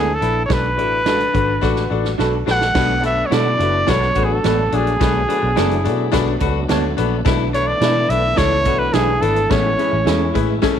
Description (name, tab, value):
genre	uptempo 1960s-style soul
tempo	107 BPM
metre	4/4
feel	straight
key	B dorian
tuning	A4 = 440 Hz
part	clear trumpet	melody	0.0-10.4 s	G#4 to F#5	-19 LUFS	right 1 dB	none
part	bright baby grand piano	accompaniment	0.0-10.8 s	A2 to D5	-22 LUFS	left 11 dB	none
part	electric guitar through a small old amp	stabs	0.0-10.2 s	A3 to A4	-26 LUFS	right 13 dB	wide subtle chorus
part	vintage muted fingered electric bass	bass	0.0-10.6 s	F#1 to B2	-21 LUFS	right 1 dB	none
part	clean electric guitar	riff	0.2-10.8 s	B3 to F#4	-28 LUFS	left 12 dB	none
part	swinging big-band drum kit	drums	0.2-10.8 s	crash cymbal, hi-hat, kick drum, snare drum	-23 LUFS	right 4 dB	none
part	tonewheel organ	sustained chords	2.7-10.8 s	E3 to D4	-27 LUFS	right 2 dB	slow rotary speaker, chorus vibrato
room	light reverb, small room reverb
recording	1960s-style stereo with parts hard left and right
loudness	-15 LUFS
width	side -8 dB against mid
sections	0.0-2.8 A section; 2.8-10.8 B section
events	drum fill 1.6-2.8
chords	0.0 E7sus4; 0.5 Bm7; 7.3 E7sus4/B; 9.5 Amaj7